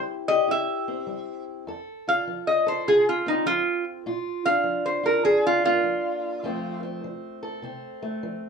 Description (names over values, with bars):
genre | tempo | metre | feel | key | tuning
acoustic country blues, solo or duo | 101 BPM | 4/4 | swing 66% on 8ths | F major | A4 = 439 Hz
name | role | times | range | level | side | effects
fingerpicked steel-string acoustic guitar | accompaniment | 0.0-8.5 s | F2 to A4 | -29 LUFS | equal | none
lap resonator guitar | melody | 0.3-6.8 s | Eb4 to F5 | -22 LUFS | equal | none
room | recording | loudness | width
moderate studio reverb, RT60 0.6 s | small room ambience | -22 LUFS | side -6 dB against mid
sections
0.0-1.7 A section; 1.7-8.5 B section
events
resonator guitar played with a steel bar solo 1.7-8.5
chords
0.0 C; 1.7 F; 4.0 Bb; 6.4 F